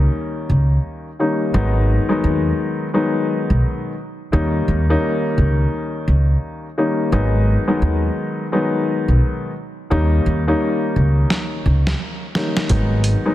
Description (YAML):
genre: hip hop, boom-bap hip-hop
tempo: 86 BPM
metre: 4/4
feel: swing 62% on 16ths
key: G# minor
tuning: A4 = 440 Hz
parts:
  - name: dark grand piano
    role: accompaniment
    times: 0.0-13.3 s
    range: D#3 to D#4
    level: -20 LUFS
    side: left 2 dB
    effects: high-pass filter, low-pass filter
  - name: upright bass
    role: bass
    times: 0.0-13.1 s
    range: G#1 to D#2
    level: -16 LUFS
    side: equal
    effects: none
  - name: boom bap sampler-style drum kit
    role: drums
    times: 11.3-13.2 s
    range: hi-hat, kick drum, snare drum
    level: -22 LUFS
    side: right 1 dB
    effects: overdrive
room: light reverb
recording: dense, heavily limited modern master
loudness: -16 LUFS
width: side -14 dB against mid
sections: 0.0-1.5 A section; 1.5-13.3 B section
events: drum fill 11.3-12.7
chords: 0.0 D#7; 1.5 G#m7; 4.3 D#7; 7.1 G#m7; 9.9 D#7; 12.7 G#m7